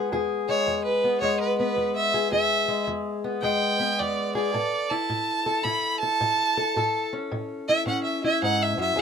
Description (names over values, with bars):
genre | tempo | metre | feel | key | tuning
acoustic country blues, solo or duo | 108 BPM | 4/4 | swing 66% on 8ths | unclear | A4 = 440 Hz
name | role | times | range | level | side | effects
fingerpicked steel-string acoustic guitar | accompaniment | 0.0-9.0 s | E2 to A4 | -26 LUFS | left 3 dB | none
rich fiddle | melody | 0.5-9.0 s | B4 to B5 | -24 LUFS | right 2 dB | none
room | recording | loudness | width
light reverb | close, detailed microphones | -22 LUFS | side -7 dB against mid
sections
0.0-9.0 A section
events
fiddle solo 0.0-9.0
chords
0.0 E; 4.5 A